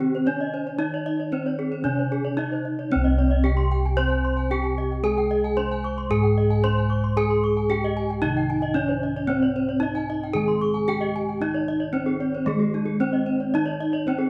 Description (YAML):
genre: Balinese gamelan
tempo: 113 BPM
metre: 4/4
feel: straight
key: C pelog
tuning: A4 = 440 Hz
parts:
  - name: gamelan-type bronze metallophone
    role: melody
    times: 0.0-14.3 s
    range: Ab3 to C5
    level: -26 LUFS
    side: equal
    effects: none
  - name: gamelan-type bronze metallophone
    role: accompaniment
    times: 0.0-14.3 s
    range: C3 to C4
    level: -34 LUFS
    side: equal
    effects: none
  - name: gamelan-type bronze metallophone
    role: arpeggios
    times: 0.0-14.2 s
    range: Eb4 to Db6+35c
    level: -35 LUFS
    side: equal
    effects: none
  - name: gamelan-type bossed gongs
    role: bass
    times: 0.0-14.3 s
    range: C2 to Ab4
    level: -29 LUFS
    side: equal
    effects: none
  - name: gamelan-type bronze metallophone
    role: arpeggios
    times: 0.1-14.3 s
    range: G4 to C6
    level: -37 LUFS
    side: equal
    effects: none
room: wet large studio reverb, RT60 1.2 s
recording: band playing live in one room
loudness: -24 LUFS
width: mono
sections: 0.0-2.9 A section; 2.9-14.3 A section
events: none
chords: none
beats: 0.26 | 0.79 1.32 1.85 2.38 | 2.92 3.45 3.98 4.51 | 5.04 5.57 6.10 6.63 | 7.16 7.70 8.23 8.76 | 9.29 9.82 10.35 10.88 | 11.41 11.94 12.47 13.01 | 13.54 14.07